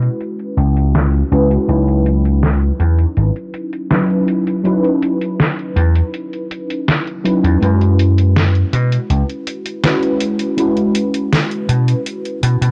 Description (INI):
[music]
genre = vaporwave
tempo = 81 BPM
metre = 4/4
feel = straight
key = C# minor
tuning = A4 = 441 Hz
[part]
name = mellow FM electric piano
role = accompaniment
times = 0.0-12.7 s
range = F#3 to B4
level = -20 LUFS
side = equal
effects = phaser, analog chorus, tape echo
[part]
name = vintage slap bass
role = bass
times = 0.0-12.7 s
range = G#1 to B2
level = -15 LUFS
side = equal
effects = tube saturation
[part]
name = detuned 8-bit digital drum machine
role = drums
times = 0.0-12.7 s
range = hi-hat, snare drum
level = -20 LUFS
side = equal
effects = low-pass filter on hats, low-pass filter on snare
[sound]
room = little or no reverb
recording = dry, gritty hardware recording, transformer saturation, cassette tape, low-pass filter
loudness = -16 LUFS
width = mono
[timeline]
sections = 0.0-12.7 A section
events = filter sweep on drum 0.0-12.7; filter sweep 0.0-12.7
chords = 0.0 F#9sus4; 1.7 C#m11; 7.6 F#9sus4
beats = 0.21 0.95 | 1.69 2.43 3.17 3.91 | 4.65 5.39 6.13 6.88 | 7.62 8.36 9.10 9.84 | 10.58 11.32 12.06